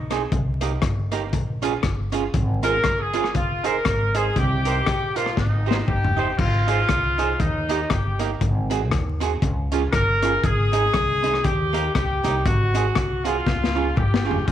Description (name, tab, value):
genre	ska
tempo	119 BPM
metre	4/4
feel	swing 58% on 8ths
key	Ab major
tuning	A4 = 440 Hz
part	mellow horn section	melody	0.0-14.5 s	Eb4 to Bb4	-23 LUFS	left 1 dB	none
part	upright bass	bass	0.0-14.5 s	F1 to Eb2	-25 LUFS	equal	none
part	archtop guitar, miked and amplified	accompaniment	0.1-14.4 s	Bb3 to C5	-27 LUFS	right 9 dB	slapback echo
part	crunchy breakbeat drum kit	drums	0.1-14.5 s	crash cymbal, hi-hat, kick drum, rim click, snare drum, toms	-24 LUFS	left 2 dB	none
room	light reverb, small room ambience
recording	1960s-style stereo, vinyl crackle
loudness	-19 LUFS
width	side -11 dB against mid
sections	0.0-6.4 A section; 6.4-14.5 B section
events	drum fill 5.4-6.4, 13.5-14.5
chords	0.3 Cm7; 1.3 Bbm7; 2.3 Ab6; 3.4 Fm7; 4.4 Cm7; 5.4 Abmaj7; 6.4 Ab; 7.4 Eb; 8.4 Ab7; 9.4 Db; 10.4 Ab; 11.4 Eb; 12.5 Ab7; 13.5 Db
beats	| 0.32 0.83 1.33 1.84 | 2.34 2.85 3.35 3.86 | 4.36 4.87 5.38 5.88 | 6.39 6.89 7.40 7.90 | 8.41 8.91 9.42 9.93 | 10.43 10.94 11.44 11.95 | 12.46 12.96 13.47 13.97 | 14.48